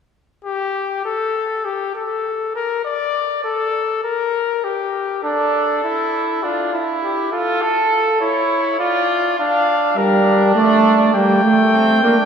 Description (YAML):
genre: classical, imitative canzona for brass ensemble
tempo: 101 BPM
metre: 4/4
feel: straight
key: G minor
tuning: A4 = 440 Hz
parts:
  - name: warm trumpet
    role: melody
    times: 0.4-12.3 s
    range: F4 to G5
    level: -20 LUFS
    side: left 5 dB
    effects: none
  - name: clear trumpet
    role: second line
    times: 5.2-12.3 s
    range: Bb3 to A4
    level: -18 LUFS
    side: right 3 dB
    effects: none
  - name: clear trombone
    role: accompaniment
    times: 10.0-12.2 s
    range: G3 to Bb3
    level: -13 LUFS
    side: right 2 dB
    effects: none
room: wet church reverb, RT60 3.4 s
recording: heard from further back in the room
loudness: -15 LUFS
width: side -7 dB against mid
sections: 0.5-12.3 A section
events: none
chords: 0.5 N.C.; 5.2 D5; 6.4 Dm; 7.6 A; 8.8 Dm/F; 10.0 Gm